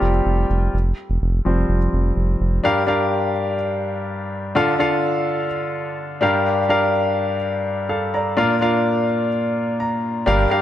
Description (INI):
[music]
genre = piano-driven pop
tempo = 126 BPM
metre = 4/4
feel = straight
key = G minor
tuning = A4 = 440 Hz
[part]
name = bright grand piano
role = accompaniment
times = 0.0-10.6 s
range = G2 to Bb5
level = -18 LUFS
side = left 1 dB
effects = none
[part]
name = round analog bass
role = bass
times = 0.0-2.6, 10.3-10.5 s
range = F1 to G1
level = -18 LUFS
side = equal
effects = none
[sound]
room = light reverb, studio reverb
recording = nothing above 11.0 kHz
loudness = -18 LUFS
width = side -12 dB against mid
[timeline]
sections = 0.7-2.6 A section; 2.6-10.6 B section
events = grand piano solo 0.7-2.6; grand piano fill 9.6-10.3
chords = 0.0 Fsus2; 2.6 Gm7; 4.5 Dm; 6.2 Gm7; 8.4 Bb